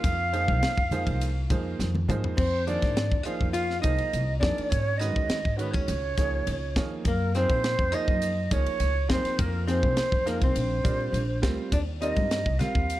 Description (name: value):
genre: electric jazz fusion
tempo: 103 BPM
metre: 4/4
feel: straight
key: F minor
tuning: A4 = 440 Hz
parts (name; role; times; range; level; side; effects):
- mellow concert flute; melody; 0.0-13.0 s; Bb4 to F5; -29 LUFS; right 2 dB; slapback echo
- archtop guitar, miked and amplified; second line; 0.0-13.0 s; Bb3 to F4; -35 LUFS; left 5 dB; none
- clear concert grand piano; accompaniment; 0.0-13.0 s; Eb3 to F5; -34 LUFS; right 4 dB; none
- upright bass; bass; 0.0-13.0 s; Bb1 to Bb2; -28 LUFS; equal; none
- tight funk drum kit; drums; 0.0-13.0 s; crash cymbal, hi-hat, kick drum, ride cymbal, snare drum, toms; -29 LUFS; equal; none
- congas; percussion; 0.5-2.2, 12.2-12.7 s; none; -32 LUFS; left 1 dB; none
room: light reverb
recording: dark, warm production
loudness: -24 LUFS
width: side -15 dB against mid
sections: 0.0-2.4 A section; 2.4-13.0 A section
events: drum fill 1.8-2.4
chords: 0.0 Fm7; 4.7 Abm7; 5.9 Dbadd9; 7.1 Gbmaj9; 9.4 Fm7; 10.6 Bb69; 11.7 Eb69